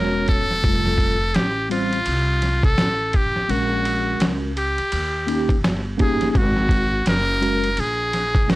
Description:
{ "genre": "hip hop, jazz-hop", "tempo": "84 BPM", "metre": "4/4", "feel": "swing 60% on 16ths", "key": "unclear", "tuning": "A4 = 441 Hz", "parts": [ { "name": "trumpet with metal mute", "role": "melody", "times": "0.0-8.6 s", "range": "F4 to A#4", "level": "-22 LUFS", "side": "equal", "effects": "none" }, { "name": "mellow tine electric piano", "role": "accompaniment", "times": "0.0-8.6 s", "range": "G3 to C#5", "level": "-23 LUFS", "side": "equal", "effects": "medium stereo tremolo" }, { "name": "upright bass", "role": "bass", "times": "0.0-8.6 s", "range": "E1 to D#2", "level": "-24 LUFS", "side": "equal", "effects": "tube saturation" }, { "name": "trip hop sampler-style drum kit", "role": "drums", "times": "0.3-8.6 s", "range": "hi-hat, kick drum, ride cymbal, snare drum", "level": "-22 LUFS", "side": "equal", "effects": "none" } ], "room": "little or no reverb", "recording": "dry, gritty hardware recording, vinyl crackle", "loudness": "-18 LUFS", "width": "side -18 dB against mid", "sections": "0.0-6.3 A section; 6.3-8.6 A section", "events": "none", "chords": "0.0 F#9; 0.6 F; 3.5 F#add9/A#; 4.9 D#7; 6.3 F#add9", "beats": "| 0.64 1.35 2.06 2.78 | 3.49 4.21 4.92 5.63 | 6.35 7.06 7.78 8.49" }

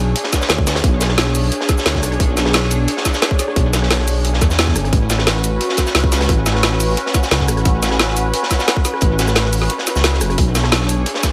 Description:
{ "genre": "liquid drum and bass", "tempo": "176 BPM", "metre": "4/4", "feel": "straight", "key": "B dorian", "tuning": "A4 = 435 Hz", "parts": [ { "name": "lush unison pad", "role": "sustained chords", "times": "0.0-11.3 s", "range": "C#4 to C#5", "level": "-25 LUFS", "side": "equal", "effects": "chorus, phaser" }, { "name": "dark detuned saw bass", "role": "bass", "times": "0.0-11.1 s", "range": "F#1 to E2", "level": "-20 LUFS", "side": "equal", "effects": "none" }, { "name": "crunchy breakbeat drum kit", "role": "drums", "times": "0.2-11.3 s", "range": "hi-hat, snare drum", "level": "-25 LUFS", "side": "equal", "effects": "high-pass filter on hats, high-pass filter on snare, high-pass filter on room, tape echo" }, { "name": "drum and bass drum kit", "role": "drums", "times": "0.2-11.3 s", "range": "hi-hat, rim click, shaker, snare drum", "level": "-22 LUFS", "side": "equal", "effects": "tape echo" }, { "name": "electronic kick drum", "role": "drums", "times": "0.3-11.3 s", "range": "none", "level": "-19 LUFS", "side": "equal", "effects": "none" } ], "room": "light reverb", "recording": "echo-heavy mix", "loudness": "-16 LUFS", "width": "mono", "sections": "0.0-11.3 A section", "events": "kick drops out 9.7-10.4", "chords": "0.0 Bm69; 4.9 A6; 10.4 Bm69", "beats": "0.15 0.49 | 0.84 1.18 1.52 1.86 | 2.20 2.54 2.88 3.22 | 3.56 3.90 4.25 4.59 | 4.93 5.27 5.61 5.95 | 6.29 6.63 6.97 7.31 | 7.66 8.00 8.34 8.68 | 9.02 9.36 9.70 10.04 | 10.38 10.72 11.06" }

